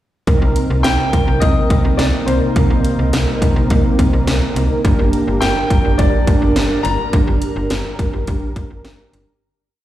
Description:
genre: synth-pop.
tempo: 105 BPM.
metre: 4/4.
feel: straight.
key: C minor.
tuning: A4 = 440 Hz.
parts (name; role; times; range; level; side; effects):
mellow synth brass; accompaniment; 0.3-9.4 s; C4 to Bb4; -21 LUFS; right 3 dB; chorus.
chorused pulse-width pad; sustained chords; 0.3-9.4 s; C3 to Eb4; -22 LUFS; equal; none.
slap-like FM bass; bass; 0.3-9.3 s; G1 to C2; -18 LUFS; equal; none.
house drum kit; drums; 0.3-9.3 s; hi-hat, kick drum, snare drum; -17 LUFS; equal; overdrive.
clear baby grand piano; melody; 0.8-8.8 s; C5 to Bb5; -22 LUFS; left 2 dB; tape echo.
room: moderate concert hall reverb, RT60 2.0 s.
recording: played on a big sound system in a bare room, stone room reverb.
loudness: -13 LUFS.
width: side -13 dB against mid.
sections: 0.3-9.4 verse.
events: fade-out 7.1-9.4.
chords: 0.3 Cm7; 4.8 Gm.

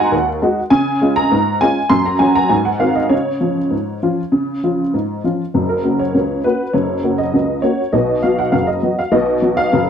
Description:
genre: ragtime piano.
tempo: 100 BPM.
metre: 2/4.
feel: straight.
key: Db major, F# major from 5.5 s.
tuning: A4 = 440 Hz.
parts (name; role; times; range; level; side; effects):
honky-tonk upright piano; solo; 0.0-9.9 s; F#1 to C6; -14 LUFS; equal; none.
room: moderate small room reverb, RT60 0.5 s.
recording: dark, warm production.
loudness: -14 LUFS.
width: side -8 dB against mid.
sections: 0.0-5.5 A section; 5.5-9.9 B section.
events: none.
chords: 0.0 Ab5; 0.7 Db; 1.9 Gb5; 2.5 Ab7; 3.1 Db; 5.5 F#; 7.9 B5.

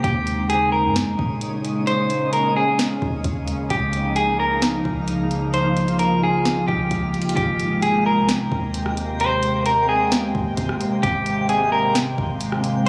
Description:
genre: hip hop, atmospheric cloud-rap.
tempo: 131 BPM.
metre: 4/4.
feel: half-time.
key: Ab major.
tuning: A4 = 440 Hz.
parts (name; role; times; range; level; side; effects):
clean electric guitar; melody; 0.0-12.9 s; G4 to C5; -24 LUFS; equal; delay.
warbly tape-like pad; sustained chords; 0.0-12.9 s; C3 to G5; -25 LUFS; equal; chorus, built-in reverb, sidechain pumping.
soft 808-style bass; bass; 0.0-12.9 s; Ab1 to Bb2; -32 LUFS; equal; none.
smooth R&B drum kit; drums; 0.0-12.9 s; hi-hat, kick drum, rim click, snare drum; -28 LUFS; equal; none.
twinkling granular texture; texture; 0.0-12.9 s; Ab3 to G5; -35 LUFS; equal; built-in reverb.
room: digital ambience.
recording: recorded on a phone in the room, club reverb, compression.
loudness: -21 LUFS.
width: mono.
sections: 0.0-7.4 A section; 7.4-12.9 B section.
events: none.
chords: 0.0 Eb7sus4; 3.7 Db69; 7.4 Abmaj9.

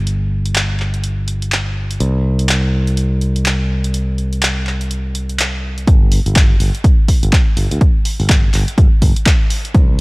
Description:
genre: deep house.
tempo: 124 BPM.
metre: 4/4.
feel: swing 60% on 16ths.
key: unclear.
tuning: A4 = 440 Hz.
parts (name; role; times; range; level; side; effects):
modern bright fingered electric bass; bass; 0.0-10.0 s; G1 to D2; -17 LUFS; equal; sidechain pumping, low-pass filter.
punchy analog drum machine; drums; 0.1-9.9 s; handclaps, hi-hat; -20 LUFS; equal; none.
electronic kick drum; drums; 5.9-9.9 s; none; -11 LUFS; equal; none.
room: little or no reverb.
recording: dry, gritty hardware recording.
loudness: -13 LUFS.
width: side -26 dB against mid.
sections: 0.0-5.9 A section; 5.9-10.0 B section.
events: build-up 5.9-10.0.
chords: none.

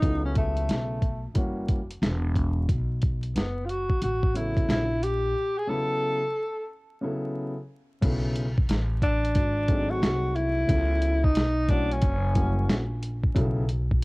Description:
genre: hip hop, jazz-hop.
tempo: 90 BPM.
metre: 4/4.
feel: swing 64% on 16ths.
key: unclear.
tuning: A4 = 440 Hz.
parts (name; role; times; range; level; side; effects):
breathy tenor saxophone; melody; 0.0-13.0 s; A3 to A4; -27 LUFS; equal; cassette tape.
dark concert grand piano; accompaniment; 0.0-13.6 s; C#3 to B4; -32 LUFS; left 1 dB; cassette tape.
upright bass; bass; 0.0-14.0 s; E1 to C#2; -27 LUFS; equal; none.
dusty soul sampler-style drum kit; drums; 0.0-14.0 s; crash cymbal, hi-hat, kick drum, snare drum; -25 LUFS; equal; cassette tape.
room: little or no reverb.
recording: home recording on cassette, vinyl crackle.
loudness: -23 LUFS.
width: side -24 dB against mid.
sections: 0.0-8.0 A section; 8.0-14.0 B section.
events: break 5.4-8.0.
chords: 0.0 B9sus4; 1.4 F#7b9; 2.7 B5; 9.4 G#7b9; 10.7 C#m7b5; 12.0 F#7b9; 13.4 B7(no3).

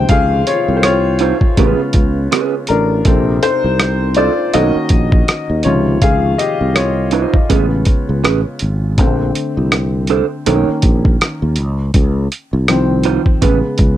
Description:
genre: R&B, neo-soul.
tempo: 81 BPM.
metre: 4/4.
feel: swing 56% on 16ths.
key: unclear.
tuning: A4 = 437 Hz.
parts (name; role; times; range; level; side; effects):
warm upright piano; accompaniment; 0.0-14.0 s; C3 to G5; -17 LUFS; left 2 dB; none.
sustaining fretless electric bass; bass; 0.0-14.0 s; G#1 to D#2; -16 LUFS; equal; analog chorus.
dusty soul sampler-style drum kit; drums; 0.1-14.0 s; hi-hat, kick drum, rim click; -14 LUFS; equal; overdrive.
electric guitar through a small old amp; second line; 0.8-13.6 s; C#4 to C#5; -17 LUFS; right 11 dB; none.
room: little or no reverb.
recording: none.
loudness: -12 LUFS.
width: side -12 dB against mid.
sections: 0.0-14.0 A section.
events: upright piano solo 0.0-14.0.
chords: 0.0 Dbmaj9; 1.6 Amaj9; 3.1 Bbmaj9; 4.5 Bmaj9; 5.6 Dbmaj9; 7.5 Amaj9; 9.0 Bbmaj9; 10.5 Bmaj9; 11.6 Dbmaj9; 13.4 Amaj9.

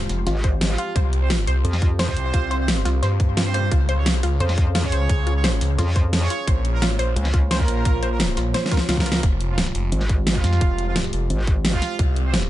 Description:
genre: dark technical drum and bass.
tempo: 174 BPM.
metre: 4/4.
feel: straight.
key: F minor.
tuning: A4 = 441 Hz.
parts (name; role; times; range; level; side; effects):
dark analog pad; sustained chords; 0.0-12.5 s; Ab3 to F5; -32 LUFS; equal; chorus, sidechain pumping.
phased detuned saw bass; bass; 0.0-12.5 s; F1 to G2; -22 LUFS; equal; phaser, overdrive, sidechain pumping.
dubstep drum kit; drums; 0.1-12.5 s; hi-hat, snare drum; -24 LUFS; equal; small room reverb.
wide unison pluck; arpeggios; 0.3-9.2 s; F4 to C5; -29 LUFS; left 1 dB; sidechain pumping, ping-pong delay.
metallic wobble bass; bass; 0.3-2.1, 4.4-7.7, 9.9-11.8 s; Ab1 to F2; -22 LUFS; equal; chorus.
electronic kick drum; drums; 0.4-12.1 s; none; -20 LUFS; equal; overdrive, small room reverb.
mellow brass ensemble; stabs; 0.7-12.4 s; F3 to Db5; -31 LUFS; right 5 dB; ping-pong delay.
zap; sound effects; 3.5-3.6 s; none; -38 LUFS; equal; none.
room: little or no reverb.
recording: nothing above 10.9 kHz.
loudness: -18 LUFS.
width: side -14 dB against mid.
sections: 0.0-9.2 A section; 9.2-12.5 A section.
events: drop 0.0-9.2, 9.2-12.5; drum fill 8.5-9.2; band accent 9.1.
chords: 0.0 Fmadd9; 1.0 Csus4; 3.7 Db; 6.5 Bbm; 9.2 Fmadd9; 12.0 Csus4.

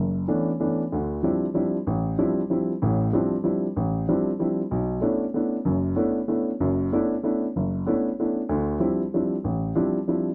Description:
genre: jazz.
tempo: 190 BPM.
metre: 3/4.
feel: swing 63% on 8ths.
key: unclear.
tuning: A4 = 441 Hz.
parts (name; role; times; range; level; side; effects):
dark baby grand piano; solo; 0.0-10.3 s; F#1 to E4; -25 LUFS; equal; none.
room: studio reverb.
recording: dry, close 1970s-style studio recording.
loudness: -25 LUFS.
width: mono.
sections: 0.0-10.3 A section.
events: none.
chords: 0.0 Bm11; 0.9 Dm11; 4.7 Bm11; 8.5 Dm11.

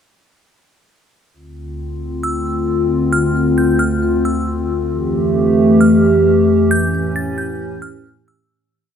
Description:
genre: hip hop.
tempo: 134 BPM.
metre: 4/4.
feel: half-time.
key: D minor.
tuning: A4 = 440 Hz.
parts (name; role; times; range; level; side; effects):
warbly tape-like pad; sustained chords; 1.7-8.5 s; D2 to G4; -14 LUFS; equal; chorus, built-in reverb.
delicate synth tine bell; melody; 2.2-8.5 s; E6 to A6; -24 LUFS; right 1 dB; chorus, tremolo, tape echo.
room: little or no reverb.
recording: rough home demo mix.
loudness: -13 LUFS.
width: side -8 dB against mid.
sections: 1.3-8.5 verse.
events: fade-out 6.7-8.5.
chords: 1.3 Dm7; 4.9 Fmaj9; 6.7 A7.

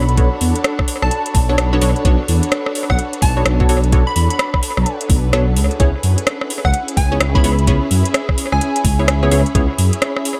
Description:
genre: UK garage, two-step garage.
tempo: 128 BPM.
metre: 4/4.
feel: swing 62% on 16ths.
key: B dorian.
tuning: A4 = 440 Hz.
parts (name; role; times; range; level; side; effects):
plucky unison lead; melody; 0.0-9.2 s; F#5 to B5; -26 LUFS; equal; tape echo.
warm symphonic violin section; sustained chords; 0.0-10.4 s; C#4 to C#5; -31 LUFS; equal; sidechain pumping.
punchy chord stab; stabs; 0.0-9.7 s; B3 to C#5; -25 LUFS; equal; chorus, dub echo.
dark detuned saw bass; bass; 0.0-9.9 s; B1 to F#2; -18 LUFS; equal; sidechain pumping.
ethereal airy pad; texture; 0.0-10.4 s; C#4 to B5; -28 LUFS; equal; ensemble chorus, built-in reverb, sidechain pumping.
garage drum kit; drums; 0.1-10.4 s; hi-hat, rim click; -23 LUFS; equal; tape echo.
electronic kick drum; drums; 0.2-9.7 s; none; -18 LUFS; equal; none.
room: light reverb.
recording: echo-heavy mix.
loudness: -16 LUFS.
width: mono.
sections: 0.0-10.4 A section.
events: none.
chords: 0.0 Bm7; 5.6 C#m7.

